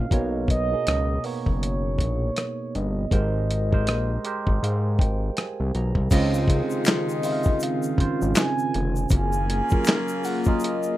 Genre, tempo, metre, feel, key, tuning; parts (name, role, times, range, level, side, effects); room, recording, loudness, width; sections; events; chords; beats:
R&B, neo-soul; 80 BPM; 4/4; swing 60% on 16ths; Db major from 6.1 s; A4 = 440 Hz
mellow horn-like synth lead; melody; 0.0-11.0 s; Db5 to Ab5; -30 LUFS; right 1 dB; chorus, plate reverb
barky tine electric piano; accompaniment; 0.0-11.0 s; Cb3 to Bb5; -29 LUFS; right 4 dB; overdrive, phaser, plate reverb
fat analog bass; bass; 0.0-9.6 s; F1 to Ab2; -24 LUFS; left 1 dB
dusty soul sampler-style drum kit; drums; 0.1-10.8 s; crash cymbal, handclaps, hi-hat, kick drum, rim click, snare drum; -22 LUFS; equal
hollow soft pad; sustained chords; 6.1-11.0 s; Eb3 to Ab4; -30 LUFS; left 1 dB; chorus, plate reverb
clear saxophone section; stabs; 6.1-11.0 s; C3 to F4; -30 LUFS; left 3 dB; plate reverb
tube shaker and finger snaps; percussion; 6.1-11.0 s; -38 LUFS; left 4 dB
light reverb; rough home demo mix; -21 LUFS; side -15 dB against mid
0.0-6.1 A section; 6.1-11.0 B section
tine electric piano fill 3.9-6.1
0.1 Cbmaj9; 3.1 Abmaj9; 6.1 Dbmaj9; 9.1 Gbmaj9
| 0.11 0.86 1.61 2.36 | 3.11 3.86 4.61 5.36 | 6.11 6.86 7.61 8.36 | 9.11 9.86 10.61